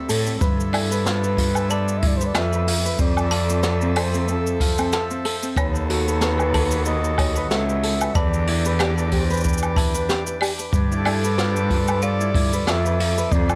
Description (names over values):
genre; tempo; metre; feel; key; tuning
folktronica; 93 BPM; 4/4; swing 56% on 16ths; unclear; A4 = 441 Hz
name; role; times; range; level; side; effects
accordion; sustained chords; 0.0-13.6 s; C3 to E5; -33 LUFS; equal; plate reverb
ukulele; arpeggios; 0.0-13.6 s; C4 to B4; -31 LUFS; equal; digital delay, plate reverb
rich cello; bass; 0.1-13.6 s; C#2 to A2; -25 LUFS; equal; none
jazz brush drum kit; drums; 0.1-13.6 s; cabasa, hi-hat, snare drum, woodblock; -29 LUFS; equal; none
kick drum; drums; 0.4-13.5 s; none; -25 LUFS; equal; none
breathy flugelhorn; melody; 0.7-13.6 s; A4 to E5; -29 LUFS; equal; vintage 12-bit sampler grit, digital delay, plate reverb
folk marimba with hard mallets; second line; 0.7-13.0 s; C#5 to A5; -34 LUFS; equal; digital delay, plate reverb
room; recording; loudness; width
light reverb; none; -21 LUFS; mono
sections
0.4-13.6 A section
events
none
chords
0.4 G13; 3.0 Fmaj7; 5.6 B7/D#; 8.2 Em7; 10.7 G13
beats
| 0.41 1.05 1.70 2.35 | 2.99 3.63 4.28 4.93 | 5.57 6.22 6.86 7.51 | 8.15 8.80 9.44 10.09 | 10.73 11.38 12.02 12.67 | 13.31